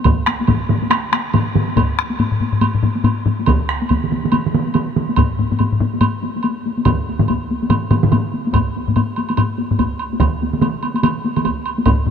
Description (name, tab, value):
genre	japanese traditional, taiko drum ensemble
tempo	142 BPM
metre	4/4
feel	swing 60% on 16ths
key	none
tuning	none
part	woodblock	percussion	0.0-12.0 s	none	-26 LUFS	right 4 dB	none
part	solo taiko drums	percussion	0.1-12.1 s	none	-19 LUFS	left 4 dB	none
part	solo taiko drums	percussion	0.1-11.4 s	none	-22 LUFS	right 7 dB	none
part	taiko ensemble	percussion	0.1-12.1 s	none	-20 LUFS	left 2 dB	none
part	taiko ensemble	percussion	0.1-12.0 s	none	-20 LUFS	right 2 dB	none
room	light reverb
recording	dark, warm production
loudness	-15 LUFS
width	side -7 dB against mid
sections	0.0-8.5 A section; 8.5-12.1 B section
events	speeding up 0.0-12.1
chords	none